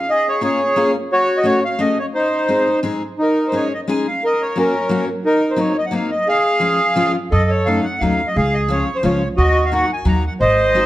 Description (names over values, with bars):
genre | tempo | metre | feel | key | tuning
musette waltz | 175 BPM | 3/4 | rubato | Db major | A4 = 440 Hz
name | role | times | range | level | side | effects
accordion | melody | 0.0-10.9 s | Db4 to Bb5 | -16 LUFS | equal | none
picked steel-string acoustic guitar | accompaniment | 0.4-10.9 s | F3 to Ab4 | -22 LUFS | left 2 dB | none
upright bass | bass | 7.3-10.9 s | Ab1 to Gb2 | -19 LUFS | right 1 dB | none
room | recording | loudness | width
moderate recital hall reverb, RT60 1.4 s | dark, warm production | -15 LUFS | side -15 dB against mid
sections
0.0-10.9 A section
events
none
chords
0.1 Bbm7; 1.1 Gbmadd9; 2.1 Ab; 3.2 Dbsus2; 4.2 Gb; 5.2 Cm7b5; 6.3 Db; 7.3 Gbm6; 8.4 Db; 9.4 Ebm